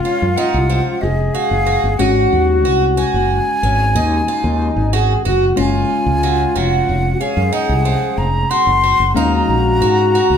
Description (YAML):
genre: progressive instrumental, progressive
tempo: 184 BPM (eighths)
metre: 11/8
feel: straight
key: unclear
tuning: A4 = 442 Hz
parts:
  - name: breathy wooden flute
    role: melody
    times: 0.0-10.4 s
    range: Eb5 to C6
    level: -19 LUFS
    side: equal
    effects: none
  - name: mellow trombone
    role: second line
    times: 0.0-10.4 s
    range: Eb4 to Ab4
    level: -19 LUFS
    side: left 3 dB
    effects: none
  - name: bell-like tine electric piano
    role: accompaniment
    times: 0.0-10.4 s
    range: Ab3 to F5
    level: -23 LUFS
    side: left 4 dB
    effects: none
  - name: picked twelve-string acoustic guitar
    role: arpeggios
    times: 0.0-10.4 s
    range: F3 to Gb4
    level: -22 LUFS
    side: right 8 dB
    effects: tape echo
  - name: fretless electric bass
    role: bass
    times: 0.2-10.4 s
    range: F1 to Ab2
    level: -18 LUFS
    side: equal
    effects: none
room: wet large studio reverb, RT60 0.9 s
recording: band playing live in one room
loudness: -13 LUFS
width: side -8 dB against mid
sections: 0.0-10.4 A section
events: none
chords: 0.0 Gb5; 2.0 Ab7sus4; 5.6 Gb5; 9.2 Ebm7